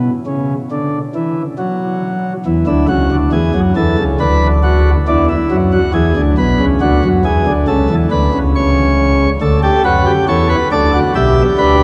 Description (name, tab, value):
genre	classical, baroque-style 3-part fugue for pipe organ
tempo	69 BPM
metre	4/4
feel	straight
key	unclear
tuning	A4 = 440 Hz
part	chamber organ, principal chorus	solo	0.0-11.8 s	B1 to E5	-14 LUFS	equal	none
room	wet cathedral reverb, RT60 7.2 s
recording	lossy compression artefacts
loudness	-14 LUFS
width	mono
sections	0.0-11.8 A section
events	none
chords	0.0 N.C.; 2.5 A; 4.2 Bm/D; 5.9 E7; 7.7 A/C#; 9.4 D; 11.2 Em7/B